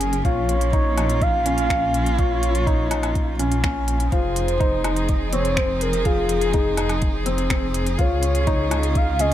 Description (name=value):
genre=piano and strings electronica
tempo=124 BPM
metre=4/4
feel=straight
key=Bb minor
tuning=A4 = 440 Hz
part: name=warm string quartet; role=sustained chords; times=0.0-9.3 s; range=Db3 to Bb4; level=-29 LUFS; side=right 2 dB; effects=sidechain pumping
part: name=felt-muted upright piano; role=riff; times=0.0-9.3 s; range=C4 to F4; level=-25 LUFS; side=left 2 dB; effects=ping-pong delay
part: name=dark detuned saw bass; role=bass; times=0.0-9.3 s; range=F1 to Db2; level=-24 LUFS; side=equal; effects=sidechain pumping
part: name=organic electronic drum kit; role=drums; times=0.0-9.3 s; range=finger snaps, hi-hat, woodblock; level=-29 LUFS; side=left 1 dB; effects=none
part: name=warm velvety synth lead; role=melody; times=0.2-9.3 s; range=Ab4 to F5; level=-25 LUFS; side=equal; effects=chorus, ping-pong delay
part: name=electronic kick drum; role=drums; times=0.2-9.1 s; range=none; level=-22 LUFS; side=equal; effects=none
room=little or no reverb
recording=none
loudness=-18 LUFS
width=side -12 dB against mid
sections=0.0-9.3 A section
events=none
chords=0.2 Bbm; 4.1 Fm7; 8.0 Db